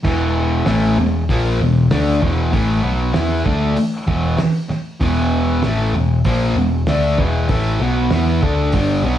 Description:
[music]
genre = garage rock duo or trio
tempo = 96 BPM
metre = 4/4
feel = straight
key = unclear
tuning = A4 = 438 Hz
[part]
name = fuzz guitar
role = riff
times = 0.0-9.2 s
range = E2 to E4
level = -17 LUFS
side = equal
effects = distortion
[part]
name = hollow-body short-scale picked electric bass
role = bass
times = 0.0-9.2 s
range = E1 to E2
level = -20 LUFS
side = left 1 dB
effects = none
[part]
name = cloth-damped thuddy drum kit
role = drums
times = 0.0-8.9 s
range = crash cymbal, hi-hat, kick drum, snare drum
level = -23 LUFS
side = equal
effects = none
[sound]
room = moderate club reverb, RT60 0.7 s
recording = studio reverb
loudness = -15 LUFS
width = side -11 dB against mid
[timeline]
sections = 0.0-9.2 A section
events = none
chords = 0.0 E5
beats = | 0.04 0.66 1.28 1.91 | 2.53 3.15 3.77 4.39 | 5.02 5.64 6.26 6.88 | 7.50 8.12 8.74

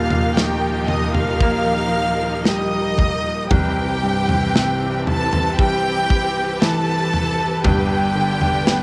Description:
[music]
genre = pop ballad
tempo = 58 BPM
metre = 4/4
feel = straight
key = unclear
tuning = A4 = 440 Hz
[part]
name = warm studio violin section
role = melody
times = 0.0-8.8 s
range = G4 to F6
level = -24 LUFS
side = equal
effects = none
[part]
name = bright grand piano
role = accompaniment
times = 0.0-8.8 s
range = Eb1 to B3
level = -24 LUFS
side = equal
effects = none
[part]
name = warm symphonic string section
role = sustained chords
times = 0.0-8.8 s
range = E3 to B4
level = -27 LUFS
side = equal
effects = none
[part]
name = modern studio drum kit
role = drums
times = 0.1-8.8 s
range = kick drum, snare drum, toms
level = -22 LUFS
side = equal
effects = none
[sound]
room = light reverb, studio reverb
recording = none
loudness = -19 LUFS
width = mono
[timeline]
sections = 0.0-8.8 A section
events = none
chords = 0.0 Ebadd9; 3.5 Cmaj7; 7.6 G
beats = 0.38 1.42 2.46 | 3.51 4.55 5.58 6.62 | 7.64 8.66

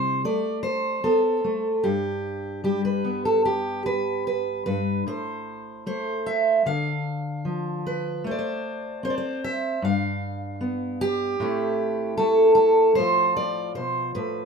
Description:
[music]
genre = folk, solo fingerstyle acoustic guitar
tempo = 76 BPM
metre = 4/4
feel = straight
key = unclear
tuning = A4 = 444 Hz
[part]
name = fingerpicked steel-string acoustic guitar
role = solo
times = 0.0-14.5 s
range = G2 to F5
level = -22 LUFS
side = equal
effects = none
[sound]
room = moderate studio reverb, RT60 0.6 s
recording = minimal, uncompressed stereo recording, faint mains hum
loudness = -22 LUFS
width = side -5 dB against mid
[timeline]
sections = 0.0-14.5 A section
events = none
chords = 0.2 Am; 1.8 G; 5.1 N.C.; 6.7 Dm; 8.3 Am; 9.8 G; 11.4 Am7; 13.0 F/A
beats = 0.25 1.04 | 1.84 2.65 3.45 4.26 | 5.07 5.87 6.67 7.47 | 8.26 9.05 9.84 10.62 | 11.40 12.19 12.98 13.77

